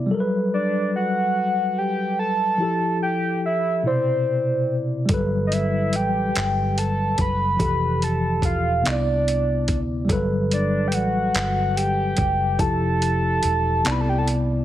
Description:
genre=slow six-eight R&B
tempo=48 BPM (dotted quarters)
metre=6/8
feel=straight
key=unclear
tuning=A4 = 439 Hz
part: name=mellow tine electric piano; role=accompaniment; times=0.0-14.6 s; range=B2 to D5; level=-24 LUFS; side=left 1 dB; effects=fast stereo tremolo
part: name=soft octave-layered synth lead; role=melody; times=0.5-14.3 s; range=C5 to B5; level=-23 LUFS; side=equal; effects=chorus, phaser, slapback echo
part: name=vintage muted fingered electric bass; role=bass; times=5.1-14.6 s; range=E1 to D2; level=-25 LUFS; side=equal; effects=none
part: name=dusty soul sampler-style drum kit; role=drums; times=5.1-14.5 s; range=handclaps, hi-hat, kick drum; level=-26 LUFS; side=equal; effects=none
room=light reverb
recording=heavily compressed radio sound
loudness=-19 LUFS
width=side -12 dB against mid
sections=0.0-14.6 A section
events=none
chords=0.1 Gmaj9; 2.6 Fmaj9; 3.8 Cmaj9; 5.1 Gmaj9; 7.6 Fmaj9; 8.8 Cmaj9; 10.1 Gmaj9; 12.6 Fmaj9; 13.8 Cmaj9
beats=| 0.09 1.34 | 2.59 3.84 | 5.09 6.34 | 7.59 8.84 | 10.09 11.34 | 12.59 13.84

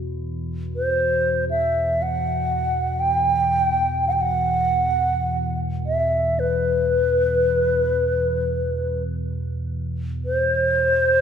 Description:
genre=world meditative, free-time meditation music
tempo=free time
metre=none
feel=none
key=E hirajoshi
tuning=A4 = 440 Hz
part: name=deep rumbling drone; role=drone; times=0.0-11.2 s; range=E2 to B2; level=-26 LUFS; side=right 1 dB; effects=built-in reverb
part: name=bronze singing bowl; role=texture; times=0.0-0.5 s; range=F#4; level=-43 LUFS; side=left 12 dB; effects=stereo widening
part: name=mellow hollow alto flute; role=melody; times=0.8-11.2 s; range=B4 to G5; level=-19 LUFS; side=equal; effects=none
room=wet scoring stage reverb, RT60 1.8 s, small room ambience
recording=none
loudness=-19 LUFS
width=side -8 dB against mid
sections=0.0-11.2 A section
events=none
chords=none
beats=free time

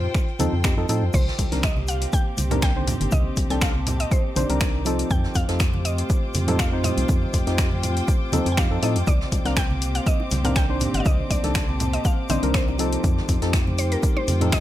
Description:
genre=deep house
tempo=121 BPM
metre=4/4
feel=swing 53% on 16ths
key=C dorian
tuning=A4 = 440 Hz
part: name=organ-like FM bass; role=bass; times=0.0-14.6 s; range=G1 to A2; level=-25 LUFS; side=equal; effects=sidechain pumping
part: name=jazz brush drum kit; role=drums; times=0.0-14.6 s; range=hi-hat, shaker, snare drum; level=-38 LUFS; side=equal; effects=high-pass filter on hats, high-pass filter on snare, high-pass filter on perc, high-pass filter on room
part: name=warm chamber string section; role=texture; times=0.0-14.6 s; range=C4 to G5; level=-35 LUFS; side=left 1 dB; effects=sidechain pumping
part: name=deep house drum kit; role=drums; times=0.1-14.6 s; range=crash cymbal, finger snaps, hi-hat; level=-29 LUFS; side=left 2 dB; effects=overdrive
part: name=electronic kick drum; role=drums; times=0.1-14.6 s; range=none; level=-22 LUFS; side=equal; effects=none
part: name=percussive organ stab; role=stabs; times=0.4-14.6 s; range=D3 to C5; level=-27 LUFS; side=equal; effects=chorus, sidechain pumping, ping-pong delay
part: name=congas and bongos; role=percussion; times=0.4-14.5 s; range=none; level=-30 LUFS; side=right 3 dB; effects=none
part: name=mallet-like synth pluck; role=melody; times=1.1-14.6 s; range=Bb4 to G5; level=-31 LUFS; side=right 1 dB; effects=chorus, dub echo
part: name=dark analog pad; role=sustained chords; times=1.1-14.6 s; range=A3 to A5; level=-33 LUFS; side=left 2 dB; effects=chorus, sidechain pumping
part: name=clear studio violin section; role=texture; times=1.1-14.6 s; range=C5 to D6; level=-38 LUFS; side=equal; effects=sidechain pumping
room=light reverb, small room ambience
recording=none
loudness=-20 LUFS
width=side -13 dB against mid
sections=0.0-14.6 A section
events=none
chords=0.0 F7; 1.1 Cm9; 5.1 F7; 9.1 Cm9; 13.0 F7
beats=0.15 0.64 | 1.14 1.64 2.13 2.63 | 3.12 3.62 4.12 4.61 | 5.11 5.60 6.10 6.59 | 7.09 7.59 8.08 8.58 | 9.07 9.57 10.07 10.56 | 11.06 11.55 12.05 12.54 | 13.04 13.54 14.03 14.53

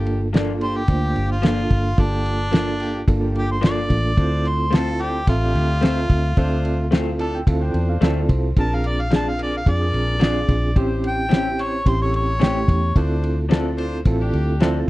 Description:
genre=straight-eighth soul blues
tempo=109 BPM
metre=4/4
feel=straight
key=D minor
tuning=A4 = 440 Hz
part: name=overdriven reed electric piano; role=accompaniment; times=0.0-14.9 s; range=A3 to A5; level=-24 LUFS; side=right 2 dB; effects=fast tremolo
part: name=bright horn section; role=sustained chords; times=0.0-14.7 s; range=Bb3 to C5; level=-34 LUFS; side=left 2 dB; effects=none
part: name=vintage muted fingered electric bass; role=bass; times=0.0-14.8 s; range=G1 to F2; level=-22 LUFS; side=equal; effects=none
part: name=cloth-damped thuddy drum kit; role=drums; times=0.1-14.7 s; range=kick drum, ride cymbal, snare drum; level=-17 LUFS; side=equal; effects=none
part: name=electric guitar through a small old amp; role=stabs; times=0.3-14.8 s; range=E3 to A4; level=-28 LUFS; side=left 5 dB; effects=spring reverb
part: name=warm harmonica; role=melody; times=0.6-12.9 s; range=D4 to A5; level=-25 LUFS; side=equal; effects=overdrive
room=small room reverb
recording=dry, close 1970s-style studio recording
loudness=-17 LUFS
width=side -18 dB against mid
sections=0.0-14.9 A section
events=harmonica solo 0.0-14.9; reed electric piano fill 6.9-8.6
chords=0.0 Gm7; 4.2 Dm7; 8.6 Bb7; 10.8 A7#9; 13.0 Dm7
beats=0.34 0.89 1.44 | 1.99 2.53 3.08 3.63 | 4.18 4.73 5.28 5.83 | 6.37 6.92 7.47 8.02 | 8.57 9.12 9.67 10.22 | 10.77 11.31 11.86 12.41 | 12.96 13.51 14.06 14.61

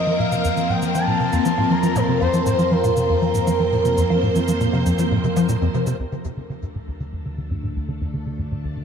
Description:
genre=ambient, sequencer-driven space music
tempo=119 BPM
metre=4/4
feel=straight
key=D minor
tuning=A4 = 440 Hz
part: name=expressive portamento lead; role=melody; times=0.0-5.5 s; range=Bb4 to Bb5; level=-23 LUFS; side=right 1 dB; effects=lush chorus, shimmer reverb, tape echo
part: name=phased string machine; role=sustained chords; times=0.0-8.8 s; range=F3 to C5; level=-24 LUFS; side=left 1 dB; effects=ensemble chorus, phaser, shimmer reverb
part: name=analog drone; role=bass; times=0.0-8.8 s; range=D2 to F2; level=-27 LUFS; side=equal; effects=chorus
part: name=tight sequencer bass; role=riff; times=0.1-8.8 s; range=D2 to F3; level=-22 LUFS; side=equal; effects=wide subtle chorus, tape echo
part: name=cabasa and woodblock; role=percussion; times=0.3-6.0 s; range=none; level=-38 LUFS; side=right 1 dB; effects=tape echo
room=wet spring reverb, RT60 2.6 s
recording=echo-heavy mix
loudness=-18 LUFS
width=side -7 dB against mid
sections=0.0-6.0 A section; 6.0-8.8 B section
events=filter sweep on analog synth bass 0.0-6.0, 6.0-8.8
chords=0.0 Fsus4; 6.0 Dm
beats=0.45 0.95 1.46 | 1.96 2.46 2.97 3.47 | 3.98 4.48 4.98 5.49 | 5.99 6.50 7.00 7.50 | 8.01 8.51

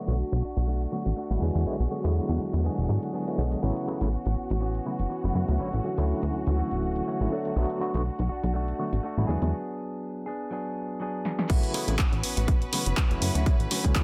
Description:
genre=filtered disco house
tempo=122 BPM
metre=4/4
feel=swing 55% on 16ths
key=A major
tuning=A4 = 440 Hz
part: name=overdriven tine electric piano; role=accompaniment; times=0.0-14.0 s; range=C#3 to A4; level=-34 LUFS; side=equal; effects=fast tremolo, phaser, vintage 12-bit sampler grit, sidechain pumping, low-pass filter
part: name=bright studio string section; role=sustained chords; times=0.0-14.0 s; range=F#4 to B5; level=-40 LUFS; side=equal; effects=sidechain pumping, low-pass filter
part: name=direct-recorded clean electric guitar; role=riff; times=0.0-14.0 s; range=E3 to G#4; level=-37 LUFS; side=equal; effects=sidechain pumping, low-pass filter
part: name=plucky analog bass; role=bass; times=0.1-14.0 s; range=D1 to G#2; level=-29 LUFS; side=equal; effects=sidechain pumping, low-pass filter
part: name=punchy analog drum machine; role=drums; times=0.1-14.0 s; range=crash cymbal, handclaps, hi-hat, snare drum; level=-32 LUFS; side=equal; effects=overdrive, sidechain pumping on cymbals, low-pass filter on cymbals, sidechain pumping on hats, low-pass filter on hats, low-pass filter on snare
part: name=electronic kick drum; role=drums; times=11.5-14.0 s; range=none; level=-26 LUFS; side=equal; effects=none
room=light reverb, digital ambience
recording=none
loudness=-28 LUFS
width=mono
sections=0.0-11.5 A section; 11.5-14.0 B section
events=filter sweep 0.0-11.5; break 9.5-11.5; drum fill 11.3; drop 11.5-14.0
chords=0.0 Bm7; 1.4 E9; 3.6 A69; 5.6 Dmaj9; 7.3 Bm7; 9.3 E9; 11.5 A69; 13.5 Dmaj9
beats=0.18 0.68 1.17 | 1.66 2.15 2.64 3.14 | 3.63 4.12 4.61 5.10 | 5.59 6.09 6.58 7.07 | 7.56 8.05 8.55 9.04 | 9.53 10.02 10.51 11.01 | 11.50 11.99 12.48 12.97 | 13.46 13.96

